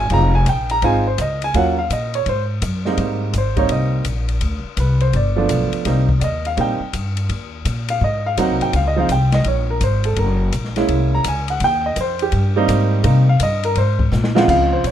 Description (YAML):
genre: jazz piano trio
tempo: 167 BPM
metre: 4/4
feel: swing 65% on 8ths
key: Ab major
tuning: A4 = 440 Hz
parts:
  - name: warm upright piano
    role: melody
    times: 0.0-14.9 s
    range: Db2 to Bb5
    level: -19 LUFS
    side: right 2 dB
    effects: none
  - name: upright bass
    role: bass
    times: 0.0-14.9 s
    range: F1 to C3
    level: -18 LUFS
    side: left 1 dB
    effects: none
  - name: open jazz drum kit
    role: drums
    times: 0.1-14.9 s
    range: crash cymbal, hi-hat, kick drum, ride cymbal, snare drum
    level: -26 LUFS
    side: left 3 dB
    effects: none
room: little or no reverb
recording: minimal, uncompressed stereo recording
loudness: -16 LUFS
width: side -10 dB against mid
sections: 0.0-3.0 A section; 3.0-14.5 B section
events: upright piano solo 3.0-14.9; drum fill 14.1-14.5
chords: 0.1 Fm7; 1.5 Ebm7; 2.3 Ab7; 3.0 Abmaj7; 4.4 Csus2; 5.1 G7; 5.9 Cm7; 7.3 Eb5; 8.0 Ab7; 8.7 Dbmaj7; 10.2 Gb9; 11.6 Abmaj7; 13.8 Ab69